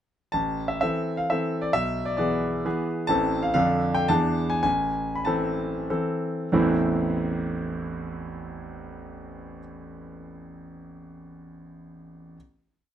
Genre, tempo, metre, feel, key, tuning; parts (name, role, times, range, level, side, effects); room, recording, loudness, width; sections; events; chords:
classical, romantic triple-time dance for piano with dotted rhythms; 90-141 BPM; 3/4; rubato; A minor; A4 = 440 Hz
bright concert grand piano; solo; 0.3-12.4 s; A1 to B5; -25 LUFS; equal
little or no reverb; close, detailed microphones; -23 LUFS; side -10 dB against mid
0.3-6.5 A section; 6.5-10.2 final chord
slowing down 2.4-6.5
0.3 Am; 1.7 E7/B; 3.1 Am; 3.6 Dm/F; 4.1 E7; 4.6 Am